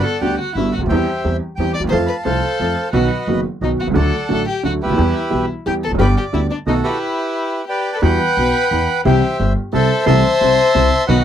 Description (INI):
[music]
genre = tango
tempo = 177 BPM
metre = 3/4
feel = rubato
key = E minor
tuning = A4 = 438 Hz
[part]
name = bandoneon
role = melody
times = 0.0-11.2 s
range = F#4 to D6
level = -20 LUFS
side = right 2 dB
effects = none
[part]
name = warm violin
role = second line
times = 0.0-11.2 s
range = D4 to D5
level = -22 LUFS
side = left 6 dB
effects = none
[part]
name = clear upright piano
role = accompaniment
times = 0.0-11.2 s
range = F#1 to A4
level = -19 LUFS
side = right 1 dB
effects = none
[part]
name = upright bass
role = bass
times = 0.2-11.2 s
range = E1 to F2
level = -20 LUFS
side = equal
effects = none
[sound]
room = light reverb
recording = dry, close 1970s-style studio recording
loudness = -15 LUFS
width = side -10 dB against mid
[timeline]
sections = 0.0-8.0 A section; 8.0-11.2 B section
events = stop 7.0-8.0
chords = 0.0 Gmaj7; 0.9 C/E; 1.9 F; 2.9 B; 4.0 D; 5.0 Em; 6.0 G; 6.7 B7; 7.0 Em7; 8.0 Emadd9; 9.1 C; 10.1 Am/C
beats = 0.22 0.56 | 0.90 1.24 1.58 | 1.91 2.25 2.59 | 2.93 3.27 3.61 | 3.95 4.30 4.64 | 4.98 5.32 5.66 | 5.99 6.33 6.67 | 7.00 7.34 7.69 | 8.03 8.37 8.71 | 9.05 9.39 9.73 | 10.07 10.41 10.74 | 11.08